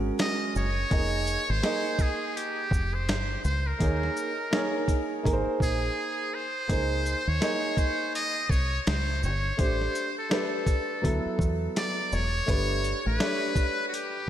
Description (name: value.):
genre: hip hop, jazz-hop.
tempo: 83 BPM.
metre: 4/4.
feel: swing 60% on 16ths.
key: unclear.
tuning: A4 = 440 Hz.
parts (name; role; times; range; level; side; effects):
dark grand piano; accompaniment; 0.0-14.2 s; F#3 to Eb5; -31 LUFS; right 1 dB; none.
deep dub fingered electric bass; bass; 0.0-13.2 s; E1 to E2; -29 LUFS; equal; none.
trumpet with metal mute; melody; 0.2-14.3 s; Gb4 to Eb5; -30 LUFS; equal; ping-pong delay.
dusty soul sampler-style drum kit; drums; 0.2-14.1 s; hi-hat, kick drum, shaker, snare drum; -29 LUFS; equal; none.
room: moderate lush hall reverb, RT60 2.5 s.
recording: dreamy mix soaked in reverb.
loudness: -25 LUFS.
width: side -11 dB against mid.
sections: 0.0-14.3 A section.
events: break 6.0-6.7.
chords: 0.0 Gbadd9; 0.9 Fm9; 3.8 Eb5; 5.2 Abadd9; 6.7 Dbsus2; 9.6 Am9; 11.0 Dadd9; 12.5 Gadd9.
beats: 0.19 | 0.91 1.64 2.36 3.08 | 3.80 4.53 5.25 5.97 | 6.70 7.42 8.14 8.86 | 9.59 10.31 11.03 11.76 | 12.48 13.20 13.92.